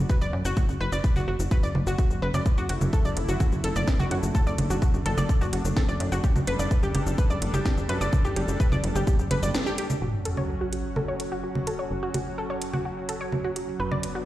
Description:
melodic techno; 127 BPM; 4/4; straight; F# phrygian; A4 = 442 Hz
tight sequencer bass; bass; 0.0-14.3 s; F#1 to F#2; -29 LUFS; equal; sidechain pumping
analog pluck; arpeggios; 0.1-14.2 s; F#4 to D5; -31 LUFS; equal; chorus, sidechain pumping, tape echo
electronic kick drum; drums; 0.1-9.2 s; -24 LUFS; equal; studio reverb
house drum kit; drums; 0.1-14.1 s; congas, hi-hat, shaker, snare drum; -31 LUFS; right 1 dB; studio reverb
lush unison pad; sustained chords; 2.5-14.3 s; D3 to A4; -33 LUFS; right 1 dB; chorus, sidechain pumping
sub drop; sound effects; 10.0-11.9 s; -33 LUFS; equal
light reverb; played on a big sound system in a bare room, large studio reverb; -23 LUFS; side -14 dB against mid
0.0-10.0 A section; 10.0-14.3 B section
break 9.5-10.0; band accent 9.5; impact 10.0-11.9; filter sweep on synth arpeggio sound 10.0-14.3
0.0 Bm/F#; 2.5 D/F#; 6.2 G/F#; 10.0 F#m

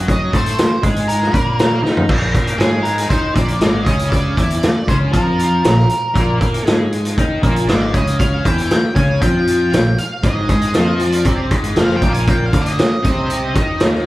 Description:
psychedelic rock; 118 BPM; 4/4; straight; A4 = 441 Hz
overdriven electric guitar; riff; 0.0-14.1 s; F2 to Eb5; -20 LUFS; left 1 dB; rotary speaker
growling fingered electric bass; bass; 0.0-14.0 s; F1 to Eb3; -20 LUFS; equal; overdrive
octave-fuzz lead guitar; melody; 0.1-13.9 s; Ab4 to Ab5; -22 LUFS; equal; distortion
vintage drum kit; drums; 0.1-14.0 s; crash cymbal, hi-hat, kick drum, snare drum, toms; -16 LUFS; equal
moderate large studio reverb, RT60 1.0 s; band playing live in one room, faint mains hum; -13 LUFS; side -17 dB against mid
0.0-2.1 A section; 2.1-14.1 B section
drum fill 1.8; lead electric guitar solo 2.1-14.1
0.0 Eb5; 2.1 Bb5; 10.2 Ab5

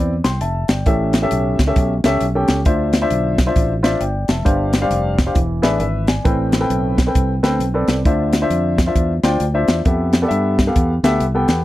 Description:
uptempo gospel; 133 BPM; 4/4; swing 62% on 8ths; A4 = 441 Hz
warm baby grand piano; accompaniment; 0.0-11.6 s; G2 to C6; -19 LUFS; left 1 dB
fingered electric bass; bass; 0.0-11.6 s; E1 to G2; -20 LUFS; equal
crisp fusion drum kit; drums; 0.2-11.6 s; hi-hat, kick drum, snare drum; -18 LUFS; equal
little or no reverb; dry, close 1970s-style studio recording; -15 LUFS; side -15 dB against mid
0.0-11.6 A section
0.0 Cmaj9; 0.9 A7; 2.7 Dm9; 4.5 G7sus4; 5.4 E7; 6.3 Am9; 8.1 Dm9; 9.9 Fmaj9#11

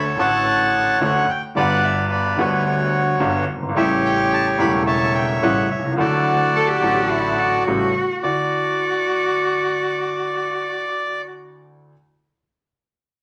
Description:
tango; 108 BPM; 4/4; rubato; D major; A4 = 439 Hz
bandoneon; melody; 0.0-11.2 s; F#4 to B5; -22 LUFS; equal
clear upright piano; accompaniment; 0.0-11.9 s; E1 to F#4; -25 LUFS; equal
clear double bass; bass; 0.0-8.5 s; E1 to D2; -30 LUFS; equal
rich cello; second line; 6.5-11.2 s; E4 to A4; -24 LUFS; equal
wet studio reverb, RT60 0.9 s; -19 LUFS; mono
0.0-8.2 A section; 8.2-10.5 B section
0.0 Dmaj7; 1.6 Gmaj7; 3.8 A7; 6.0 Dadd9; 7.7 A7; 8.2 Dadd9

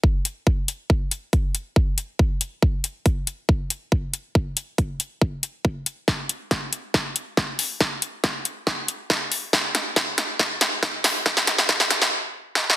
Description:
dubstep; 139 BPM; 4/4; half-time
electronic kick drum; drums; 0.0-11.8 s; -21 LUFS; equal
big-room dance drum kit; drums; 0.3-12.8 s; hi-hat, snare drum; -21 LUFS; equal; high-pass filter on snare, high-pass filter on hats, high-pass filter on toms
light reverb, digital ambience; dense, heavily limited modern master, high-pass filter; -21 LUFS; side -13 dB against mid
0.0-12.8 A section
build-up 0.0-12.8; filter sweep 0.0-12.8; drum fill 6.1-12.1, 12.6; stop 12.1-12.8

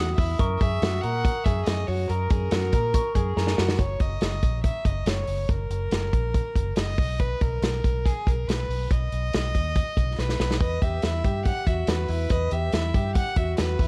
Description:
jangly indie pop; 141 BPM; 4/4; straight; A4 = 440 Hz
warm violin; melody; 0.0-13.9 s; G#4 to F#5; -33 LUFS; equal
glockenspiel with rubber mallets; second line; 0.0-3.8 s; A#5 to D#6; -41 LUFS; equal
electric guitar through a small old amp; arpeggios; 0.0-3.8, 10.6-13.9 s; E4 to B4; -33 LUFS; equal
vintage muted fingered electric bass; bass; 0.0-13.9 s; F#1 to A#2; -30 LUFS; equal
vintage drum kit; drums; 0.2-13.9 s; hi-hat, kick drum, snare drum; -28 LUFS; equal
small room ambience; dark, warm production; -25 LUFS; mono
0.0-3.8 A section; 3.8-13.9 B section
drum fill 3.4-3.8, 10.2-10.6
0.4 F#; 7.0 Bmaj7; 10.6 Em

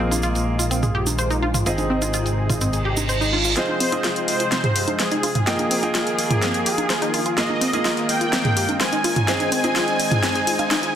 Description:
progressive house; 126 BPM; 4/4; straight; F minor; A4 = 440 Hz
lush unison pad; sustained chords; 0.0-11.0 s; C3 to C5; -29 LUFS; left 1 dB; chorus
wide unison pluck; arpeggios; 0.0-10.9 s; C4 to F5; -26 LUFS; left 1 dB; digital delay
bright baby grand piano; stabs; 0.0-11.0 s; Bb3 to G5; -26 LUFS; right 1 dB; low-pass filter, digital delay
fat analog bass; bass; 0.0-3.5 s; Ab1 to Bb1; -24 LUFS; equal; tube saturation
deep house drum kit; drums; 0.1-10.9 s; hi-hat, snare drum; -25 LUFS; left 1 dB; high-pass filter on hats, low-pass filter on hats, high-pass filter on snare, low-pass filter on snare
electronic congas and toms; percussion; 0.1-10.7 s; -25 LUFS; right 2 dB; overdrive
tube shaker; percussion; 0.1-3.5 s; -29 LUFS; right 4 dB
reverse cymbal and riser; sound effects; 2.8-11.0 s; -29 LUFS; right 2 dB
soft supersaw; melody; 3.6-11.0 s; Ab4 to Ab5; -24 LUFS; equal; digital delay
light reverb, digital ambience; dense, heavily limited modern master; -18 LUFS; side -9 dB against mid
0.0-3.6 A section; 3.6-11.0 B section
filter sweep on analog synth pad 0.0-3.6; reverse cymbal 2.8-3.6; build-up 3.6-11.0; drum fill 3.6-11.0
0.0 Bb7sus4; 1.7 Ab; 3.6 Fm7; 5.5 Ebadd9; 7.4 Bb7sus4; 9.3 Fm7

